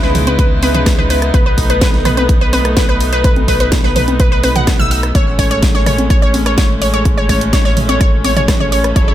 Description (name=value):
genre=progressive house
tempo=126 BPM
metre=4/4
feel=straight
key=unclear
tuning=A4 = 442 Hz
part: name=clear chamber string section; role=sustained chords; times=0.0-9.1 s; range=C#3 to A4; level=-20 LUFS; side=equal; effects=sidechain pumping
part: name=wide unison pluck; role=arpeggios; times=0.0-9.1 s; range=B4 to E6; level=-17 LUFS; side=equal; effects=sidechain pumping, digital delay
part: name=round analog bass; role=bass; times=0.0-9.1 s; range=F#1 to C#2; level=-18 LUFS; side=equal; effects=sidechain pumping
part: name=pop drum kit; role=drums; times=0.0-9.1 s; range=hi-hat, rim click, snare drum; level=-20 LUFS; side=right 1 dB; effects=studio reverb, sidechain pumping on hats, sidechain pumping on cymbals
part: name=electronic toms and congas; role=percussion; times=0.1-8.7 s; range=none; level=-19 LUFS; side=equal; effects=sidechain pumping on toms, studio reverb, sidechain pumping on perc
part: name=electronic kick drum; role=drums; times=0.4-9.1 s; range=none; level=-13 LUFS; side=equal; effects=studio reverb
room=digital ambience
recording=none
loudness=-10 LUFS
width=side -12 dB against mid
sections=0.0-9.1 A section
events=none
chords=0.0 C#m7; 1.3 B7; 5.2 Amaj7